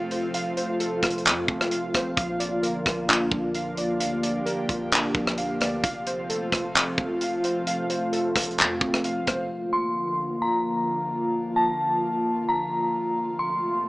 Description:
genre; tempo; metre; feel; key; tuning
hip hop, atmospheric cloud-rap; 131 BPM; 4/4; half-time; Bb major; A4 = 439 Hz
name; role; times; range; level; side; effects
airy breathy pad; sustained chords; 0.0-13.9 s; C3 to G4; -28 LUFS; equal; chorus, sidechain pumping
warbly lo-fi synth keys; arpeggios; 0.0-9.5 s; A3 to F5; -29 LUFS; right 1 dB; chorus, low-pass filter, digital delay
soft 808-style bass; bass; 0.0-9.5 s; F1 to F2; -41 LUFS; equal; none
tight funk drum kit; drums; 0.1-9.4 s; handclaps, hi-hat, kick drum, rim click; -24 LUFS; equal; none
dark detuned synth bell; melody; 9.7-13.9 s; A5 to C6; -25 LUFS; equal; chorus, low-pass filter, digital delay
room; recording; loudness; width
moderate plate reverb, RT60 1.9 s, studio ambience; rough home demo mix, small speaker sound; -23 LUFS; side -21 dB against mid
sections
0.0-9.5 A section; 9.5-13.9 B section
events
none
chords
0.0 F; 2.2 Bb; 5.8 F; 9.5 Bb; 13.2 F

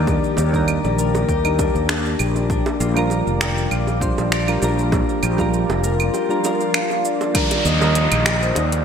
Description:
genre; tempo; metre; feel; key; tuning
sunset chillout; 99 BPM; 4/4; swing 54% on 16ths; Eb major; A4 = 440 Hz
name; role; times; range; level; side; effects
soft electric-piano-like synth keys; accompaniment; 0.0-8.8 s; Eb3 to Eb5; -23 LUFS; moving between left 3 dB and right 4 dB; chorus, auto-pan, digital delay, shimmer reverb
shimmering ambient pad; sustained chords; 0.0-8.8 s; Eb3 to D5; -26 LUFS; left 1 dB; chorus, built-in reverb, shimmer reverb
concert harp; arpeggios; 0.0-8.8 s; D4 to G5; -26 LUFS; left 6 dB; digital delay, shimmer reverb
fretless electric bass; bass; 0.0-8.8 s; F1 to Eb2; -21 LUFS; equal; analog chorus
deep house drum kit; drums; 0.1-8.8 s; claves, finger snaps, hi-hat, shaker; -26 LUFS; right 2 dB; overdrive, gated reverb
electronic kick drum; drums; 0.1-7.5 s; none; -24 LUFS; equal; overdrive
bongos; percussion; 0.1-8.7 s; none; -31 LUFS; right 4 dB; none
vibraphone with soft mallets; melody; 6.8-8.8 s; C5 to F5; -24 LUFS; right 2 dB; digital delay, shimmer reverb
downlifter; sound effects; 7.3-8.8 s; none; -22 LUFS; equal; none
room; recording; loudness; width
moderate lush hall reverb, RT60 1.8 s; bright 1980s-style digital production; -16 LUFS; side -7 dB against mid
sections
0.0-7.3 A section; 7.3-8.8 B section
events
none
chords
0.0 Ebmaj7; 2.2 Bb6; 7.3 Ebmaj7

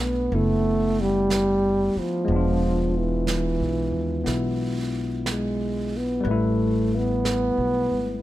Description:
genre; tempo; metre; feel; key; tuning
jazz ballad; 61 BPM; 4/4; swing 66% on 8ths; unclear; A4 = 439 Hz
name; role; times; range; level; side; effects
breathy trombone; melody; 0.0-8.2 s; E3 to B3; -24 LUFS; right 1 dB; none
barky tine electric piano; accompaniment; 0.0-8.2 s; G3 to F#5; -27 LUFS; left 4 dB; overdrive
upright bass; bass; 0.0-8.2 s; E1 to Eb2; -27 LUFS; right 1 dB; none
vintage brush drum kit; drums; 0.3-8.2 s; brushed snare drum, hi-hat, snare drum; -34 LUFS; right 4 dB; none
room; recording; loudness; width
little or no reverb; none; -21 LUFS; side -14 dB against mid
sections
0.0-8.2 A section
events
none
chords
0.0 Bm7; 2.3 E7b9; 6.2 A7sus2

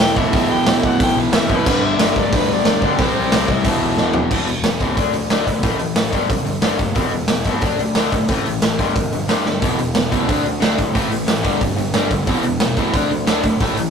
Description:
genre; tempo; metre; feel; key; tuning
punk rock; 180 BPM; 4/4; straight; E minor; A4 = 441 Hz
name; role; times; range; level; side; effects
clear soprano saxophone; melody; 0.0-4.2 s; B4 to G5; -24 LUFS; left 1 dB; ping-pong delay
cranked stack guitar; riff; 0.0-13.9 s; E2 to D4; -21 LUFS; left 4 dB; overdrive
overdriven semi-hollow guitar; riff; 0.0-4.3, 9.6-13.9 s; E2 to D4; -22 LUFS; right 4 dB; none
fuzz picked electric bass; bass; 0.0-13.9 s; E1 to A2; -27 LUFS; equal; overdrive
raw garage drum kit; drums; 0.0-13.9 s; crash cymbal, hi-hat, kick drum, snare drum, toms; -18 LUFS; right 1 dB; none
room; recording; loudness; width
moderate small room reverb, RT60 0.5 s; rough rehearsal-room recording, tube saturation; -15 LUFS; side -6 dB against mid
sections
0.0-4.3 A section; 4.3-13.9 B section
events
drum fill 4.0-4.3, 9.5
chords
0.0 E5; 1.7 G5; 3.0 C5; 3.6 E5; 5.0 D5; 5.6 A5; 6.1 G5; 7.0 Em; 7.6 D5; 8.3 A5; 8.8 G5; 9.6 E5; 10.3 D5; 11.0 A5; 11.5 G5; 12.3 Em; 12.9 D5

